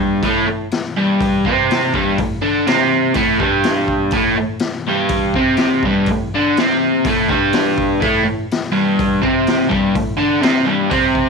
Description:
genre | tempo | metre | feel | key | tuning
garage rock duo or trio | 123 BPM | 4/4 | straight | A minor | A4 = 440 Hz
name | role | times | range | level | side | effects
crunchy overdriven guitar | riff | 0.0-11.3 s | G2 to D4 | -14 LUFS | equal | none
raw garage drum kit | drums | 0.2-11.3 s | hi-hat, kick drum, snare drum | -22 LUFS | left 2 dB | none
room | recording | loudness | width
light reverb, small room ambience | 1960s-style stereo | -14 LUFS | side -4 dB against mid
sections
0.0-11.3 A section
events
none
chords
0.0 Am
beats
| 0.24 0.73 1.22 1.70 | 2.19 2.68 3.17 3.65 | 4.14 4.62 5.11 5.60 | 6.08 6.57 7.05 7.54 | 8.03 8.51 9.00 9.48 | 9.96 10.45 10.93

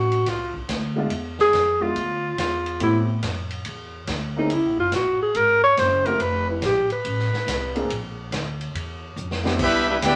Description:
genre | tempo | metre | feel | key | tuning
jazz, big band swing | 141 BPM | 4/4 | swing 66% on 8ths | unclear | A4 = 441 Hz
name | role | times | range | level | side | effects
mellow alto saxophone | melody | 0.0-7.9 s | Eb4 to C#5 | -22 LUFS | equal | none
upright bass | bass | 0.0-10.2 s | F1 to A2 | -31 LUFS | equal | none
swinging big-band drum kit | drums | 0.1-10.2 s | crash cymbal, hi-hat, kick drum, ride cymbal, snare drum | -34 LUFS | equal | none
warm grand piano | accompaniment | 1.0-9.6 s | Ab3 to Ab4 | -30 LUFS | equal | none
bright trumpet section | melody | 9.6-10.2 s | D4 to G5 | -22 LUFS | equal | none
clear trombone section | second line | 9.6-10.2 s | G3 to G4 | -26 LUFS | equal | none
clear trombone section | sustained chords | 9.6-10.2 s | D3 to E4 | -33 LUFS | equal | none
room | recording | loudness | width
wet studio reverb, RT60 0.8 s | none | -23 LUFS | mono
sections
0.0-9.6 A section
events
alto saxophone solo 0.0-9.6; drum fill 9.2-9.6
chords
0.0 Dm7; 1.1 E7b9; 2.8 Am9; 4.5 F#; 6.2 F; 7.9 Bb; 9.6 Cmaj9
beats
0.26 0.68 | 1.11 1.53 1.96 2.38 | 2.80 3.23 3.65 4.08 | 4.50 4.92 5.35 5.77 | 6.20 6.62 7.05 7.47 | 7.90 8.32 8.74 9.17 | 9.59 10.02

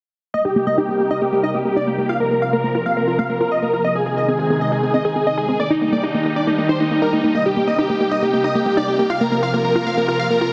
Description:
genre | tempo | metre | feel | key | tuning
trance | 137 BPM | 4/4 | straight | C minor | A4 = 440 Hz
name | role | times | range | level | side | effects
big supersaw lead | melody | 0.3-10.5 s | Eb4 to F5 | -22 LUFS | equal | low-pass filter, delay
plucky unison lead | second line | 0.3-10.5 s | Eb4 to F5 | -27 LUFS | equal | vintage 12-bit sampler grit, digital delay
supersaw pad | sustained chords | 0.3-10.5 s | C3 to Bb4 | -26 LUFS | equal | low-pass filter
unison pluck | arpeggios | 0.3-10.5 s | Bb3 to Ab4 | -25 LUFS | equal | digital delay
room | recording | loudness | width
wet huge ambient reverb, RT60 6.2 s | dense, heavily limited modern master | -19 LUFS | mono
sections
0.3-10.5 A section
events
filter sweep on supersaw synth 0.3-10.5; filter sweep on synth arpeggio sound 0.3-10.5; filter sweep on digital synth lead 0.3-10.5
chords
0.3 Cm7; 2.1 Bbsus2; 3.8 Ab; 5.6 Ebmaj7; 7.3 Cm7; 9.1 Bbsus2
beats
| 0.34 0.78 1.22 1.65 | 2.09 2.53 2.97 3.40 | 3.84 4.28 4.72 5.16 | 5.59 6.03 6.47 6.91 | 7.35 7.79 8.22 8.66 | 9.10 9.54 9.97 10.41

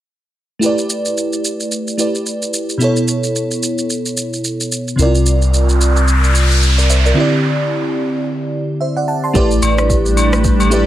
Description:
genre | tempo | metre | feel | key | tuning
amapiano | 110 BPM | 4/4 | swing 58% on 16ths | A minor | A4 = 440 Hz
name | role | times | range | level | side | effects
crystalline FM electric piano | accompaniment | 0.6-10.9 s | B2 to C6 | -16 LUFS | right 1 dB | chorus
afro-pop drum kit | drums | 0.6-10.9 s | kick drum, rim click, shaker | -20 LUFS | equal | none
punchy sub bass | bass | 5.0-10.8 s | A1 to C2 | -13 LUFS | equal | none
noise sweep | sound effects | 5.4-8.3 s | none | -20 LUFS | right 1 dB | none
granular cloud pad | sustained chords | 9.8-10.9 s | G3 to D4 | -19 LUFS | right 1 dB | built-in reverb, sidechain pumping
agogo bells | percussion | 9.6-10.7 s | none | -21 LUFS | left 5 dB | none
room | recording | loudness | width
digital ambience | none | -13 LUFS | side -13 dB against mid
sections
0.6-9.4 A section; 9.4-10.9 B section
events
noise sweep 5.4-9.4; break 7.2-9.4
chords
0.6 A9sus4; 2.8 B9sus4; 5.0 C9sus4; 7.2 D9sus4; 9.4 A9sus4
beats
| 0.62 1.17 1.72 2.26 | 2.81 3.35 3.90 4.44 | 4.99 5.53 6.08 6.62 | 7.17 7.72 8.26 8.81 | 9.35 9.90 10.44

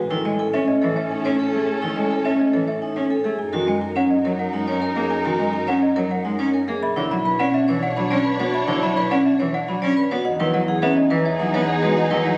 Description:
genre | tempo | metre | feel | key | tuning
classical, minimalist pattern music | 105 BPM | 3/4 | straight | unclear | A4 = 437 Hz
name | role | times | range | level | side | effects
marimba with medium hard mallets | melody | 0.0-12.4 s | A4 to B5 | -30 LUFS | equal | none
mellow clarinet | second line | 0.0-12.4 s | C#4 to D#4 | -34 LUFS | equal | none
warm symphonic string section | sustained chords | 0.0-12.4 s | C#4 to C#5 | -31 LUFS | equal | none
rich studio double bass section | bass | 0.0-12.4 s | B1 to A2 | -32 LUFS | equal | none
rich cello | accompaniment | 0.1-12.4 s | D3 to C#4 | -27 LUFS | equal | none
vibraphone with hard mallets | arpeggios | 0.1-12.3 s | C#4 to C#5 | -26 LUFS | equal | none
worn celesta | arpeggios | 0.3-12.4 s | D#5 to B5 | -30 LUFS | equal | none
room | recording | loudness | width
moderate recital hall reverb, RT60 1.5 s | recorded on a phone in the room, studio reverb, compression | -21 LUFS | mono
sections
0.0-12.4 A section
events
none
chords
0.0 Amaj7; 3.4 F#69; 6.8 Bmadd9; 10.3 Emaj9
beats
0.54 1.11 | 1.68 2.25 2.82 | 3.39 3.97 4.54 | 5.11 5.68 6.25 | 6.82 7.39 7.97 | 8.54 9.11 9.68 | 10.25 10.82 11.39 | 11.97

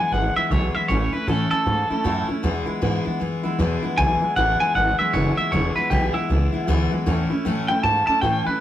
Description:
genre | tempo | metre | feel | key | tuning
rockabilly | 156 BPM | 4/4 | swing 61% on 8ths | E major | A4 = 439 Hz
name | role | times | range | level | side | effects
clean electric guitar | melody | 0.0-8.6 s | E4 to A5 | -21 LUFS | equal | spring reverb
picked steel-string acoustic guitar | accompaniment | 0.0-8.6 s | E2 to E4 | -24 LUFS | left 2 dB | none
upright bass | bass | 0.1-8.5 s | E1 to A2 | -23 LUFS | right 1 dB | none
room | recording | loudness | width
moderate studio reverb, RT60 0.6 s | rough rehearsal-room recording, tube saturation | -19 LUFS | side -12 dB against mid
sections
0.0-8.6 A section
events
clean electric guitar solo 0.0-8.6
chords
0.0 E; 0.9 A; 2.4 E; 7.1 A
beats
0.12 0.51 | 0.89 1.28 1.66 2.05 | 2.44 2.82 3.21 3.59 | 3.98 4.37 4.75 5.14 | 5.52 5.91 6.29 6.68 | 7.07 7.45 7.84 8.22

